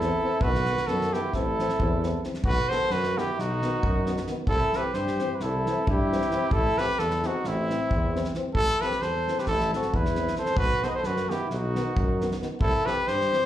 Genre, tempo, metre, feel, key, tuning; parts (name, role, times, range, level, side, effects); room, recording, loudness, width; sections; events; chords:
balkan folk, Balkan brass band; 266 BPM (eighths); 9/8; straight; A4 = 440 Hz
warm trumpet; melody; 0.0-13.5 s; E4 to D#5; -27 LUFS; right 1 dB; slapback echo
warm flugelhorn; second line; 0.0-13.5 s; C4 to B4; -32 LUFS; left 1 dB; slapback echo
mellow trombone; accompaniment; 0.0-13.4 s; D#3 to E3; -37 LUFS; right 4 dB; slapback echo
warm euphonium; accompaniment; 0.0-13.4 s; B3 to C4; -34 LUFS; left 5 dB; slapback echo
warm tuba; bass; 0.0-13.3 s; A1 to G2; -29 LUFS; equal
loose indie drum kit; percussion; 0.0-13.4 s; kick drum, snare drum; -30 LUFS; equal
light reverb; live gig heard through the venue's PA, club reverb; -23 LUFS; side -12 dB against mid
0.0-2.4 A section; 2.4-13.5 B section
0.4 B; 1.3 Am; 2.4 B; 4.5 C; 6.5 Am; 10.6 B; 12.6 C